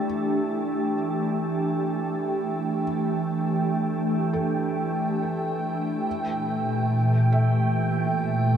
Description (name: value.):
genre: ambient.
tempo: free time.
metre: none.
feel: none.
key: unclear.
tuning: A4 = 439 Hz.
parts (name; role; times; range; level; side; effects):
soft additive organ-like pad; sustained chords; 0.0-8.6 s; Bb2 to G5; -24 LUFS; equal; ensemble chorus, built-in reverb.
felt-muted upright piano; arpeggios; 0.0-8.6 s; E3 to E5; -39 LUFS; equal; tape echo.
organ-like drone; drone; 0.0-8.6 s; E3 to A3; -28 LUFS; right 1 dB; ensemble chorus, built-in reverb.
room: wet huge ambient reverb, RT60 8.0 s.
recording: dark, warm production.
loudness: -23 LUFS.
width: side -8 dB against mid.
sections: 0.0-8.6 A section.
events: fade-out on felt piano 0.0-8.6; filter sweep on ambient pad 0.0-8.6.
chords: 0.0 G5; 6.1 N.C..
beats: free time.